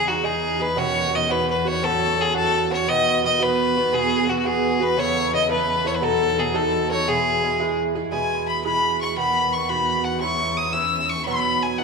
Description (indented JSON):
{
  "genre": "celtic folk",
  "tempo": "114 BPM (dotted quarters)",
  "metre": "6/8",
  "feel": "straight",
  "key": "unclear",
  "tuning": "A4 = 441 Hz",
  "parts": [
    { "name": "bright fiddle", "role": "melody", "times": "0.0-11.8 s", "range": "F#4 to E6", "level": "-21 LUFS", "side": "left 2 dB", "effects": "none" },
    { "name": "Irish bouzouki", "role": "accompaniment", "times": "0.0-11.8 s", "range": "G#2 to A4", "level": "-25 LUFS", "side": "right 10 dB", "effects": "none" },
    { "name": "warm cello", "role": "drone", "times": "0.0-11.8 s", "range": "E2", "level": "-31 LUFS", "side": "left 4 dB", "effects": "none" },
    { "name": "dark fiddle", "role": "second line", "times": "3.9-11.8 s", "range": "F#4 to E6", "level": "-27 LUFS", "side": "left 11 dB", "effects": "tape echo" }
  ],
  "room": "moderate echo chamber reverb, RT60 1.9 s, small room ambience",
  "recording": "1960s-style stereo with parts hard left and right",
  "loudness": "-19 LUFS",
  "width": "side -4 dB against mid",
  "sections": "0.0-8.1 A section; 8.1-11.8 B section",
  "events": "none",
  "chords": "0.0 C#sus2; 0.8 Badd9; 1.8 F#m; 2.9 B; 3.9 Bsus4; 5.0 Aadd9; 6.0 B7; 7.1 E; 9.2 B; 10.2 C#m; 11.3 B"
}